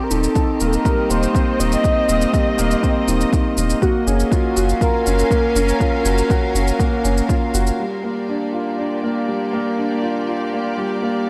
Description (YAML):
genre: piano and strings electronica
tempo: 121 BPM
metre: 4/4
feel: straight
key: unclear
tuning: A4 = 440 Hz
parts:
  - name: warm velvety synth lead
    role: melody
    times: 0.0-7.3 s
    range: Gb4 to Eb5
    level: -24 LUFS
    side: equal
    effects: chorus
  - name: clear symphonic string section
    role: sustained chords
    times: 0.0-11.3 s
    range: Bb2 to F5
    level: -29 LUFS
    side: equal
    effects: sidechain pumping
  - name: dark concert grand piano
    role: riff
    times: 0.0-11.3 s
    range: G3 to Gb4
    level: -23 LUFS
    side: equal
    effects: delay
  - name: warm sub bass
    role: bass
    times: 0.1-7.7 s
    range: Eb1 to Gb1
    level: -22 LUFS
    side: equal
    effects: sidechain pumping
  - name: shaker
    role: drums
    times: 0.1-7.8 s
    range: none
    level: -31 LUFS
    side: equal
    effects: overdrive, small room ambience
  - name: electronic kick drum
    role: drums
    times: 0.4-7.4 s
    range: none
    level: -21 LUFS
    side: equal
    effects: overdrive, small room ambience
room: light reverb, digital ambience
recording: none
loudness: -18 LUFS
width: mono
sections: 0.0-7.8 A section; 7.8-11.3 B section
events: none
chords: 0.0 Eb6; 3.8 Gbmaj7; 7.8 Bb6